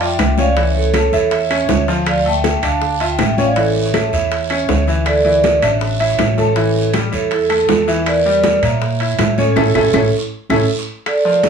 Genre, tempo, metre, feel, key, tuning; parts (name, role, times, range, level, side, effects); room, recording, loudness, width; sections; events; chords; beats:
latin, salsa; 160 BPM; 4/4; straight; A4 = 440 Hz
vibraphone with medium hard mallets; melody; 0.0-11.5 s; E4 to A5; -16 LUFS; right 4 dB
bright upright piano; accompaniment; 0.0-11.5 s; E3 to E5; -20 LUFS; left 4 dB
upright bass; bass; 0.0-10.6 s; A1 to Bb2; -20 LUFS; left 1 dB
congas; percussion; 0.0-11.5 s; -24 LUFS; left 3 dB
timbales; percussion; 0.0-11.5 s; -23 LUFS; right 10 dB
bongos; percussion; 0.2-11.5 s; -24 LUFS; left 7 dB
claves; percussion; 0.2-11.3 s; -26 LUFS; left 4 dB
guiro; percussion; 0.2-11.5 s; -28 LUFS; right 4 dB
light reverb; studio reverb; -13 LUFS; side -6 dB against mid
0.0-11.1 A section
band accent 9.6-11.1; drum fill 9.9-11.1
0.0 Dm; 0.6 A/C#; 2.1 Dmadd9; 3.6 A; 5.1 Dsus2; 6.6 A7; 8.1 Em7b5; 9.6 A
0.19 | 0.57 0.94 1.32 1.69 | 2.07 2.44 2.82 3.19 | 3.57 3.94 4.32 4.69 | 5.07 5.44 5.82 6.19 | 6.57 6.94 7.32 7.69 | 8.07 8.44 8.82 9.19 | 9.57 9.94 10.32 10.69 | 11.07 11.44